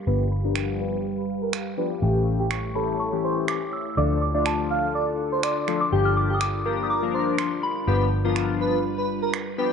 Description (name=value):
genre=dance-pop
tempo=123 BPM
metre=4/4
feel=straight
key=unclear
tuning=A4 = 440 Hz
part: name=soft synth bell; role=melody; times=0.0-8.1 s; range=G5 to F6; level=-30 LUFS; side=left 2 dB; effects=chorus, phaser, low-pass filter, tape echo
part: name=glassy FM pad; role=sustained chords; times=0.0-9.7 s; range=D3 to F5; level=-31 LUFS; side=equal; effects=ensemble chorus, built-in reverb, low-pass filter
part: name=vintage muted fingered electric bass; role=bass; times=0.0-9.7 s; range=G1 to D2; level=-26 LUFS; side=right 1 dB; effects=none
part: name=airy dreamy lead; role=melody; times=0.1-9.7 s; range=G4 to F5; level=-28 LUFS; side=right 4 dB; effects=chorus, low-pass filter
part: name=chorused polysynth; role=accompaniment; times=0.1-9.7 s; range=E3 to Bb4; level=-27 LUFS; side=left 12 dB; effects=low-pass filter
part: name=electronic finger snaps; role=drums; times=0.6-9.5 s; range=none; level=-33 LUFS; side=right 9 dB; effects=none
room=light reverb, digital ambience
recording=1960s-style stereo with parts hard left and right, nothing above 10.8 kHz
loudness=-22 LUFS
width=side -6 dB against mid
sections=0.0-9.7 A section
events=filter sweep 0.0-9.7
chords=0.1 G7; 2.0 A7; 4.0 Dm; 5.9 Gm7; 7.9 G7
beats=| 0.07 0.56 1.04 1.53 | 2.02 2.51 3.00 3.48 | 3.97 4.46 4.95 5.43 | 5.92 6.41 6.90 7.39 | 7.87 8.36 8.85 9.34